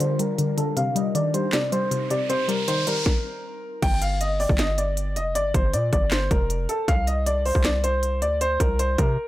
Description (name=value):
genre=hip hop, trap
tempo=157 BPM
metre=4/4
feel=half-time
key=G minor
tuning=A4 = 440 Hz
part: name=warm grand piano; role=melody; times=0.0-9.3 s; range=A4 to G5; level=-25 LUFS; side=equal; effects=low-pass filter
part: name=warbly dusty pluck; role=accompaniment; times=0.0-3.8 s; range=C3 to G3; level=-25 LUFS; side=left 2 dB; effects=chorus, low-pass filter
part: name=ethereal airy pad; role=sustained chords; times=0.0-3.0 s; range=G3 to Bb4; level=-34 LUFS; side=right 1 dB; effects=ensemble chorus, built-in reverb, phaser, low-pass filter
part: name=trap drum kit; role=drums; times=0.0-9.1 s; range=crash cymbal, handclaps, hi-hat, kick drum, snare drum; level=-24 LUFS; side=equal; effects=none
part: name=downlifter and riser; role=sound effects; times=1.7-3.1 s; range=none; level=-32 LUFS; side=right 2 dB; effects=none
part: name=hard-hitting 808-style bass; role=bass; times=3.8-9.2 s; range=F1 to C3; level=-25 LUFS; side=equal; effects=none
room=digital ambience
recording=none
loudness=-20 LUFS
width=side -15 dB against mid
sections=0.0-3.8 A section; 3.8-9.3 B section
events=filter sweep 0.0-3.8; riser 1.7-3.8; stop 3.1-3.8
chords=0.0 Gm7; 0.8 Cm7; 3.8 G7(no3); 6.9 Csus2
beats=0.00 0.39 | 0.77 1.15 1.53 1.91 | 2.30 2.68 3.06 3.44 | 3.83 4.21 4.59 4.97 | 5.35 5.74 6.12 6.50 | 6.88 7.26 7.65 8.03 | 8.41 8.79 9.18